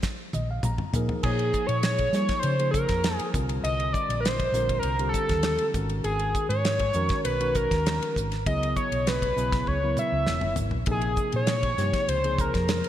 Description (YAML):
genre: electric jazz fusion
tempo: 100 BPM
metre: 4/4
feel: straight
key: unclear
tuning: A4 = 442 Hz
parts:
  - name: damped 70s drum kit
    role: drums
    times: 0.0-12.9 s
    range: crash cymbal, hi-hat, kick drum, ride cymbal, snare drum, toms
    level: -30 LUFS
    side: equal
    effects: gated reverb
  - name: bright tine electric piano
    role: accompaniment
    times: 0.3-12.9 s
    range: C3 to Bb5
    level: -32 LUFS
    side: left 2 dB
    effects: wide subtle chorus
  - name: hollow-body short-scale fingered electric bass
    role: bass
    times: 0.3-12.9 s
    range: Fb1 to G3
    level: -28 LUFS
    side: equal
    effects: none
  - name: overdriven synth lead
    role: melody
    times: 1.2-12.9 s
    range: Ab4 to Fb5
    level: -26 LUFS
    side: equal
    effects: distortion
room: moderate lush hall reverb, RT60 3.0 s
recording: bright 1980s-style digital production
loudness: -23 LUFS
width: side -11 dB against mid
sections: 0.0-1.2 A section; 1.2-12.9 B section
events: drum fill 0.0-1.2, 9.7-10.9; tine electric piano fill 0.0-1.2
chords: 0.0 Bb7sus4; 1.2 Bbm11; 3.3 C9sus4; 5.7 Abm11; 8.5 Dbm7; 10.9 Bbm11